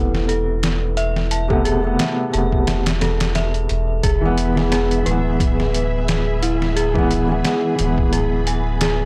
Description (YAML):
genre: trip hop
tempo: 88 BPM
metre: 4/4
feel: swing 56% on 16ths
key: unclear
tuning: A4 = 440 Hz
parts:
  - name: felt-muted upright piano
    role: accompaniment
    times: 0.0-9.1 s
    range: C3 to B3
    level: -24 LUFS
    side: equal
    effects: tremolo, tape echo
  - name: dark detuned synth bell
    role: arpeggios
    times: 0.0-9.1 s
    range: E4 to A5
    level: -27 LUFS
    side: equal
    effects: chorus, tape echo
  - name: soft dub sub bass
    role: bass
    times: 0.0-9.1 s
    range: D1 to E1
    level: -24 LUFS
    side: equal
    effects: none
  - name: trip hop sampler-style drum kit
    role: drums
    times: 0.1-9.0 s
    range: hi-hat, kick drum, snare drum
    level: -25 LUFS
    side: equal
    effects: overdrive
  - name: string machine, cellos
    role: sustained chords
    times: 4.0-9.1 s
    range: G#4 to B5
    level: -32 LUFS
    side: equal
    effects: ensemble chorus
room: digital ambience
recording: dry, gritty hardware recording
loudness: -19 LUFS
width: mono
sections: 0.0-4.0 A section; 4.0-9.1 B section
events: none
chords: 0.0 Amadd9; 4.0 E